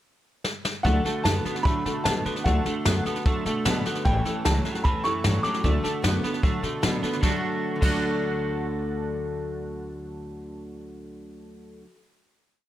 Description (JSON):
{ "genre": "rockabilly", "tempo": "151 BPM", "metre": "4/4", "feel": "straight", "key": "D major", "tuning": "A4 = 440 Hz", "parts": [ { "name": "jazz brush drum kit", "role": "drums", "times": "0.4-7.9 s", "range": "crash cymbal, hi-hat, kick drum, snare drum", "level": "-27 LUFS", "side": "equal", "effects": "none" }, { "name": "warm upright piano", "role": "melody", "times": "0.8-6.0 s", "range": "F#5 to D6", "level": "-30 LUFS", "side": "equal", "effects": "tape echo" }, { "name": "picked steel-string acoustic guitar", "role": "accompaniment", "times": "0.8-12.0 s", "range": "A2 to A4", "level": "-31 LUFS", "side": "left 3 dB", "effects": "none" }, { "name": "clean electric guitar", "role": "riff", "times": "0.8-11.9 s", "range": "A2 to F#4", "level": "-30 LUFS", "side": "right 4 dB", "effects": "analog chorus" }, { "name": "upright bass", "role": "bass", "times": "0.8-11.8 s", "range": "A1 to B2", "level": "-29 LUFS", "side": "equal", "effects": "none" } ], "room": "small room ambience", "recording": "none", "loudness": "-23 LUFS", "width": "side -13 dB against mid", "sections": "0.0-0.8 pickup bar; 0.8-7.2 A section; 7.2-10.4 final chord", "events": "drum fill 0.4-0.8", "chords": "0.0 N.C.; 0.8 D; 4.0 A7; 5.6 D", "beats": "0.04 0.45 | 0.85 1.25 1.65 2.05 | 2.45 2.85 3.25 3.65 | 4.05 4.45 4.84 5.24 | 5.64 6.04 6.43 6.83 | 7.22 7.62 8.02 8.42 | 8.81 9.21 9.61 10.01" }